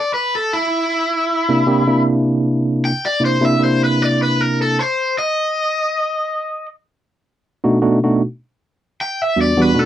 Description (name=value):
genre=blues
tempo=78 BPM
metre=4/4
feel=swing 54% on 16ths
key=unclear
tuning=A4 = 440 Hz
part: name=overdriven electric guitar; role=melody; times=0.0-9.9 s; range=E4 to G5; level=-18 LUFS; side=left 1 dB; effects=none
part: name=tine electric piano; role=accompaniment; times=1.5-9.9 s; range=E2 to G4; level=-14 LUFS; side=right 1 dB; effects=medium stereo tremolo
room=light reverb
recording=dry, close 1970s-style studio recording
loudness=-15 LUFS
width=side -11 dB against mid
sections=0.0-9.9 A section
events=overdriven electric guitar solo 0.0-9.9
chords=0.0 C7; 5.1 B7#9; 8.2 Em9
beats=0.51 1.28 | 2.05 2.82 3.59 4.36 | 5.13 5.90 6.67 7.44 | 8.21 8.98 9.75